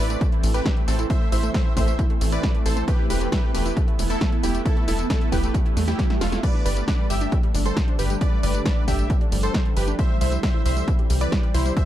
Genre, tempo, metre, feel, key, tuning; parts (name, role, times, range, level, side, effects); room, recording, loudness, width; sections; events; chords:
uplifting trance; 135 BPM; 4/4; straight; A minor; A4 = 440 Hz
supersaw stab; melody; 0.0-11.9 s; A3 to E5; -29 LUFS; equal; sidechain pumping, ping-pong delay
shimmering ambient pad; sustained chords; 0.0-11.9 s; D3 to C4; -31 LUFS; equal; chorus, built-in reverb, sidechain pumping
tight sequencer bass; bass; 0.0-11.7 s; E1 to E2; -23 LUFS; equal; sidechain pumping
wide unison pluck; arpeggios; 0.1-11.8 s; G3 to E4; -31 LUFS; right 3 dB; sidechain pumping, digital delay
punchy analog drum machine; drums; 0.1-11.9 s; crash cymbal, hi-hat, snare drum, tambourine; -30 LUFS; equal; sidechain pumping on hats, sidechain pumping on cymbals, sidechain pumping on perc
electronic kick drum; drums; 0.2-11.9 s; -22 LUFS; equal
swell; sound effects; 5.7-6.4 s; -34 LUFS; right 5 dB
little or no reverb; dark, warm production; -19 LUFS; side -12 dB against mid
0.0-11.9 A section
swell 5.7-6.4; drum fill 5.8-6.4
0.0 Am; 2.9 Esus4; 6.4 Gsus2; 10.0 C